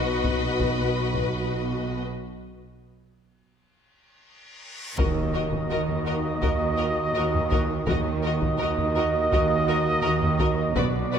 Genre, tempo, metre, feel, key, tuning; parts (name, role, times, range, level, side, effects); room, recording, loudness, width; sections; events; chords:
cinematic, epic orchestral film score; 83 BPM; 4/4; straight; Eb minor from 5.0 s; A4 = 440 Hz
rich symphonic violin section; melody; 0.0-11.2 s; D5 to D#5; -35 LUFS; left 4 dB
warm symphonic violin section; second line; 0.0-11.2 s; Bb4 to B4; -33 LUFS; left 5 dB
warm symphonic viola section; accompaniment; 0.0-11.2 s; F#4; -33 LUFS; equal
mellow French horn section; sustained chords; 0.0-11.2 s; Bb3 to Gb4; -33 LUFS; left 2 dB
clear symphonic double bass section; bass; 0.0-11.2 s; B1 to Eb2; -30 LUFS; right 4 dB
dark symphonic cello section; bass; 0.0-11.2 s; B2 to Eb3; -30 LUFS; right 3 dB
taiko ensemble; drums; 0.2-11.2 s; -29 LUFS; left 1 dB
reverse cymbal and impact; sound effects; 4.4-7.9 s; -37 LUFS; left 1 dB
warm woodwind section; sustained chords; 5.0-11.2 s; B3 to Eb5; -31 LUFS; right 1 dB
warm trumpet; stabs; 5.0-11.2 s; D5 to Eb5; -28 LUFS; right 2 dB
moderate scoring stage reverb, RT60 1.9 s; -22 LUFS; side -8 dB against mid
0.0-5.0 A section; 5.0-11.2 B section
break 2.1-5.0; drum fill 4.3-5.0; reverse cymbal 4.4-5.0; impact 5.0-7.9
0.0 B; 5.0 Ebm